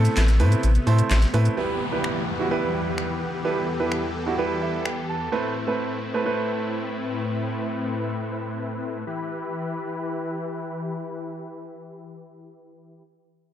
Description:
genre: dance-pop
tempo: 128 BPM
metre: 4/4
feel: straight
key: E minor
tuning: A4 = 440 Hz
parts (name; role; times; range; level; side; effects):
- warm grand piano; accompaniment; 0.0-6.8 s; G3 to A5; -26 LUFS; right 4 dB; low-pass filter
- supersaw chords; sustained chords; 0.0-13.0 s; E2 to B5; -29 LUFS; left 2 dB; low-pass filter
- warm sub bass; bass; 0.0-1.5 s; A1 to A2; -18 LUFS; equal; none
- pop drum kit; drums; 0.1-5.0 s; finger snaps, handclaps, hi-hat, shaker, snare drum; -31 LUFS; equal; none
- downlifter; sound effects; 1.6-5.3 s; none; -33 LUFS; left 1 dB; none
room: moderate plate reverb, RT60 2.1 s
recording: dark, warm production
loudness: -23 LUFS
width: side -10 dB against mid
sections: 0.0-1.6 A section; 1.6-9.1 B section; 9.1-12.8 C section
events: break 0.0-1.6; grand piano fill 4.4-5.3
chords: 0.0 Amadd9; 1.6 Em; 5.3 Amadd9; 9.1 Em

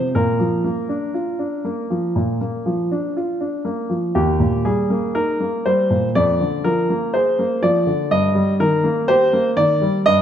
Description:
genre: classical, baroque-style suite movement for grand piano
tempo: 60 BPM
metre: 4/4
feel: rubato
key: Eb major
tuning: A4 = 436 Hz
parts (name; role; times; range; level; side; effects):
- warm baby grand piano; solo; 0.0-10.2 s; Eb2 to Eb5; -16 LUFS; equal; none
room: wet recital hall reverb, RT60 1.7 s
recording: dark, warm production, nothing above 10.3 kHz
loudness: -17 LUFS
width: side -9 dB against mid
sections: 0.0-10.2 A section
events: none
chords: 0.1 Bb; 4.1 Eb; 6.2 Bb7/F; 8.1 Eb/G

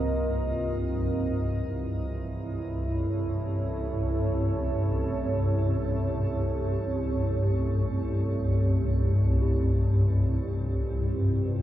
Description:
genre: dark ambient drone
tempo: free time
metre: none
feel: none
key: unclear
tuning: A4 = 442 Hz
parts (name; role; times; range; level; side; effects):
- deep dark ambient pad; sustained chords; 0.0-11.6 s; C4 to Eb5; -32 LUFS; right 2 dB; chorus, built-in reverb, shimmer reverb
- swarming drone; drone; 0.0-11.6 s; C2 to G2; -26 LUFS; equal; built-in reverb
- bronze singing bowl; texture; 0.0-11.6 s; G4; -42 LUFS; left 2 dB; shimmer reverb
room: wet cathedral reverb, RT60 6.2 s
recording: none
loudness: -25 LUFS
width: side -13 dB against mid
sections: 0.0-11.6 A section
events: fade-out on singing bowl 0.0-11.6; filter sweep on synth drone 0.0-11.6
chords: 0.0 Cm; 1.0 A; 9.4 C5

